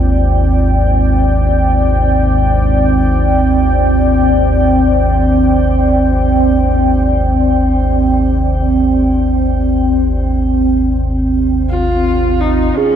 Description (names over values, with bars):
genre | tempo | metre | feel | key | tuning
dark ambient drone | free time | none | none | unclear | A4 = 440 Hz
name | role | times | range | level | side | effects
dark analog pad | sustained chords | 0.0-13.0 s | G#3 to G5 | -14 LUFS | right 1 dB | chorus, shimmer reverb
deep rumbling drone | drone | 0.0-13.0 s | G#1 to D#2 | -14 LUFS | equal | built-in reverb, lush chorus
bronze singing bowl | texture | 0.0-13.0 s | E#4 to G#4 | -26 LUFS | right 5 dB | none
rich horsehead fiddle | melody | 11.7-13.0 s | C#4 to E#4 | -16 LUFS | right 1 dB | shimmer reverb, diffuse ambient delay
room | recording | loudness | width
moderate huge ambient reverb, RT60 7.4 s | dark, warm production | -11 LUFS | side -9 dB against mid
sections
0.0-12.8 A section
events
none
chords
0.0 Cm